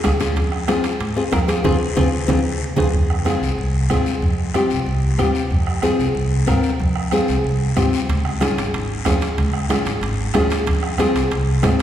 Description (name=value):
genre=latin, cumbia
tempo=186 BPM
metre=4/4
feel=straight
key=F minor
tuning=A4 = 441 Hz
part: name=nylon-string guitar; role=accompaniment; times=0.0-11.8 s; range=C4 to Bb4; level=-21 LUFS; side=left 2 dB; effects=none
part: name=upright bass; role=bass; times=0.0-11.8 s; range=Ab1 to Ab2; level=-22 LUFS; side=equal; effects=none
part: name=bombo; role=percussion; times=0.0-11.8 s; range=none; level=-23 LUFS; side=right 1 dB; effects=none
part: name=congas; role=percussion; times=0.0-11.8 s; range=none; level=-28 LUFS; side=right 2 dB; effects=none
part: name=guiro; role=percussion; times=0.0-11.8 s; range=none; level=-32 LUFS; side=left 5 dB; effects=none
part: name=timbales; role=percussion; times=0.0-2.9, 8.1-11.8 s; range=none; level=-29 LUFS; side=right 4 dB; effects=none
room=wet concert hall reverb, RT60 2.4 s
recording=recorded in a church or concert hall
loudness=-17 LUFS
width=side -10 dB against mid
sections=0.0-2.9 A section; 2.9-11.8 B section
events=band accent 1.6-2.9; drum fill 2.0-2.9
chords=0.4 Fm; 8.1 Db; 10.7 Fm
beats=0.04 | 0.36 0.68 1.00 1.32 | 1.65 1.97 2.29 2.61 | 2.93 3.25 3.58 3.90 | 4.22 4.54 4.87 5.19 | 5.51 5.83 6.15 6.48 | 6.80 7.12 7.44 7.76 | 8.09 8.41 8.73 9.05 | 9.38 9.70 10.02 10.34 | 10.66 10.98 11.31 11.63